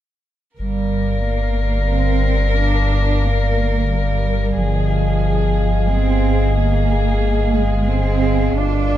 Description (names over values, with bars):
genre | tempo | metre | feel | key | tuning
cinematic | 91 BPM | 3/4 | straight | G phrygian | A4 = 440 Hz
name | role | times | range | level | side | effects
rich chamber violin section | melody | 0.6-9.0 s | F4 to Bb4 | -25 LUFS | left 4 dB | none
glass harmonica | sustained chords | 0.6-9.0 s | Ab4 to F5 | -26 LUFS | right 1 dB | none
dark chamber cello section | bass | 0.6-9.0 s | F3 to D4 | -22 LUFS | right 5 dB | none
rich studio double bass section | bass | 0.6-9.0 s | G1 | -23 LUFS | equal | none
warm sub bass | drone | 0.6-9.0 s | G1 | -19 LUFS | equal | none
room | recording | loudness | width
light reverb | minimal, uncompressed stereo recording | -15 LUFS | side -12 dB against mid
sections
0.6-9.0 A section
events
none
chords
0.6 Gm7; 4.6 Fm7/G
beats
| 0.59 1.26 1.92 | 2.58 3.24 3.90 | 4.57 5.23 5.91 | 6.57 7.23 7.88 | 8.54